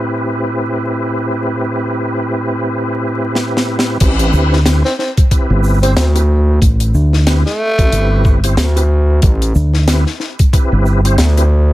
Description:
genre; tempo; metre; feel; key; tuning
glitch hop; 92 BPM; 4/4; swing 58% on 16ths; A minor; A4 = 442 Hz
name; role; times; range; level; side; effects
tonewheel organ; stabs; 0.0-11.4 s; A2 to C5; -18 LUFS; equal; chorus vibrato, fast rotary speaker, sidechain pumping, dub echo
deep reggae drum kit; drums; 3.4-11.5 s; crash cymbal, hi-hat, shaker, snare drum; -19 LUFS; left 1 dB; small room ambience
gritty driven synth bass; bass; 4.0-11.7 s; A1 to D2; -11 LUFS; equal; none
electronic kick drum; drums; 4.0-10.7 s; none; -11 LUFS; equal; small room ambience
fingered electric bass; bass; 4.3-11.2 s; G1 to D2; -12 LUFS; equal; none
breathy tenor saxophone; melody; 4.9-8.4 s; A3 to C4; -20 LUFS; equal; dub echo
room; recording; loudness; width
small room ambience; vinyl crackle; -11 LUFS; side -16 dB against mid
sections
0.0-4.0 A section; 4.0-11.7 B section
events
drum fill 3.4-4.0; drop 4.0-11.7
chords
0.0 Am9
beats
0.10 0.75 | 1.40 2.05 2.70 3.36 | 4.01 4.66 5.31 5.96 | 6.62 7.27 7.92 8.57 | 9.23 9.88 10.53 11.18

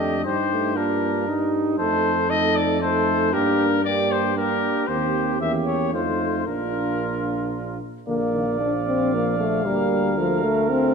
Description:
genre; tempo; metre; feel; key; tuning
classical, brass quintet; 116 BPM; 3/4; straight; Bb major; A4 = 441 Hz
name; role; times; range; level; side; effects
clear trumpet; melody; 0.0-10.9 s; Bb4 to F5; -26 LUFS; left 8 dB; none
warm flugelhorn; second line; 0.0-10.9 s; D4 to D5; -27 LUFS; right 9 dB; none
mellow trombone; accompaniment; 0.0-10.9 s; D3 to Bb3; -28 LUFS; right 5 dB; none
warm French horn; accompaniment; 0.0-10.9 s; F3 to F4; -25 LUFS; left 4 dB; none
warm tuba; bass; 0.0-10.9 s; Bb1 to G2; -27 LUFS; right 2 dB; none
room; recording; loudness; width
wet recital hall reverb, RT60 1.6 s; none; -20 LUFS; side -5 dB against mid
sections
0.0-8.1 A section; 8.1-10.9 A section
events
none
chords
0.3 Eb/G; 1.8 F7; 3.3 Gm; 4.9 Cm7/Eb; 5.4 Edim7; 5.9 F7; 6.5 Bb; 9.7 Bb/D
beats
| 0.25 0.77 1.28 | 1.80 2.31 2.82 | 3.33 3.85 4.37 | 4.89 5.41 5.93 | 6.47 7.00 7.54 | 8.08 8.61 9.13 | 9.65 10.18 10.69

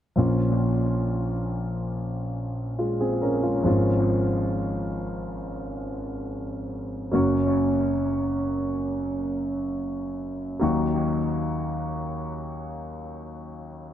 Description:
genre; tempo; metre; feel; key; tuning
pop; free time; none; none; Bb minor; A4 = 440 Hz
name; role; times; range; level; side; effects
warm grand piano; accompaniment; 0.2-13.9 s; Gb1 to Bb4; -24 LUFS; equal; dub echo
room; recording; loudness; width
light reverb; echo-heavy mix; -24 LUFS; side -10 dB against mid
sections
0.2-13.9 A section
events
none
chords
0.2 Bbm; 3.7 Db/Ab; 7.1 Gb; 10.6 Ebm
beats
free time

